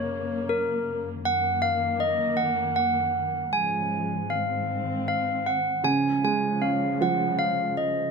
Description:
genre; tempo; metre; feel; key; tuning
children's music, lullaby; 78 BPM; 3/4; rubato; Db major; A4 = 440 Hz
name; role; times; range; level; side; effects
handbells; melody; 0.0-8.1 s; Bb4 to Ab5; -25 LUFS; right 1 dB; none
dark chamber string section; sustained chords; 0.0-8.1 s; Gb2 to C4; -31 LUFS; left 2 dB; none
felt-muted upright piano; accompaniment; 5.8-8.1 s; Db3 to Db4; -26 LUFS; right 4 dB; none
room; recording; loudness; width
light reverb; close, detailed microphones; -23 LUFS; side -5 dB against mid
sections
0.0-8.1 A section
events
none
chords
0.0 Gb; 1.2 Ebm/Gb; 3.5 Db/Ab; 4.3 Ab; 5.8 Db

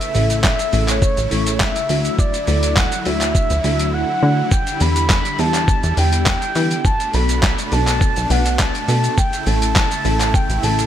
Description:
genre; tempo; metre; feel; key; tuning
dance-pop; 103 BPM; 4/4; straight; E dorian; A4 = 438 Hz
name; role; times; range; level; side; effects
mellow horn-like synth lead; melody; 0.0-10.9 s; C#5 to B5; -22 LUFS; equal; chorus, ping-pong delay
supersaw chords; sustained chords; 0.0-10.9 s; B2 to E4; -27 LUFS; right 2 dB; lush chorus, sidechain pumping
dusty soul sampler-style drum kit; drums; 0.0-10.9 s; handclaps, hi-hat, kick drum, shaker, snare drum; -19 LUFS; equal; overdrive
mellow tine electric piano; accompaniment; 0.1-10.9 s; A3 to B4; -25 LUFS; left 1 dB; medium stereo tremolo, sidechain pumping
plucky analog bass; bass; 0.1-10.9 s; A1 to E3; -19 LUFS; equal; sidechain pumping
room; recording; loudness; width
little or no reverb; bright 1980s-style digital production; -15 LUFS; side -10 dB against mid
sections
0.0-10.9 A section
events
silent gap 3.9-4.5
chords
0.0 A; 1.9 Dadd9; 4.5 Em7; 6.8 Bm7; 9.2 A

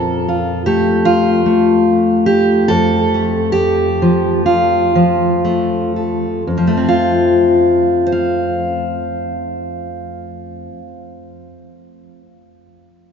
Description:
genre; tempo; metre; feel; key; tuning
folk, solo fingerstyle acoustic guitar; 56-77 BPM; 4/4; straight; F major; A4 = 440 Hz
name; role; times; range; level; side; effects
fingerpicked steel-string acoustic guitar; solo; 0.0-12.2 s; F2 to F5; -13 LUFS; equal; none
room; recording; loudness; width
wet cathedral reverb, RT60 5.3 s; recorded in a church or concert hall, nothing above 7.5 kHz; -12 LUFS; side -6 dB against mid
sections
0.0-6.5 A section; 6.5-10.7 B section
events
slowing down 0.0-6.5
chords
0.0 F

